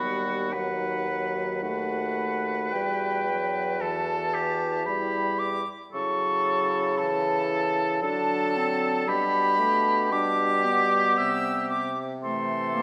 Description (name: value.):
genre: classical, slow romantic movement for wind quintet.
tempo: 57 BPM.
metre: 3/4.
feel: rubato.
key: E minor.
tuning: A4 = 440 Hz.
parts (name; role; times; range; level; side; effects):
concert flute; melody; 0.0-12.8 s; F#5 to E6; -30 LUFS; equal; none.
clear oboe; second line; 0.0-12.8 s; F#4 to B4; -32 LUFS; equal; none.
clear French horn; accompaniment; 0.0-12.8 s; E3 to A3; -36 LUFS; equal; none.
mellow clarinet; accompaniment; 0.0-12.8 s; A3 to F#4; -38 LUFS; equal; none.
warm bassoon; bass; 0.0-12.8 s; D#2 to D3; -33 LUFS; equal; none.
room: wet scoring stage reverb, RT60 1.6 s.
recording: none.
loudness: -26 LUFS.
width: mono.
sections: 0.0-12.8 A section.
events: none.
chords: 0.0 B/D#; 2.7 Em; 5.9 A/C#; 8.0 D; 9.1 G/B; 11.2 Cmaj7; 12.2 C7.